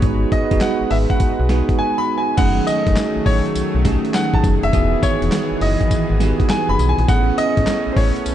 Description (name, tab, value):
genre	R&B, new jack swing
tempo	102 BPM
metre	4/4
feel	swing 66% on 16ths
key	F# dorian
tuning	A4 = 442 Hz
part	clear baby grand piano	melody	0.0-8.3 s	B#4 to B5	-22 LUFS	equal	digital delay
part	bell-like tine electric piano	accompaniment	0.0-8.3 s	A3 to G#4	-22 LUFS	right 5 dB	medium stereo tremolo
part	brassy analog pad	sustained chords	0.0-8.3 s	D#3 to B4	-24 LUFS	left 1 dB	chorus
part	slap-like FM bass	bass	0.0-8.3 s	E1 to B1	-20 LUFS	left 1 dB	none
part	dusty soul sampler-style drum kit	drums	0.0-8.3 s	crash cymbal, handclaps, hi-hat, kick drum, snare drum, tambourine	-20 LUFS	left 1 dB	none
room	moderate concert hall reverb, RT60 2.0 s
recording	dark, warm production, nothing above 10.3 kHz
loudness	-15 LUFS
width	side -11 dB against mid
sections	0.0-2.4 A section; 2.4-8.3 B section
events	none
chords	0.0 G#m7; 2.4 F#m69; 4.7 Emaj7; 7.1 Amaj9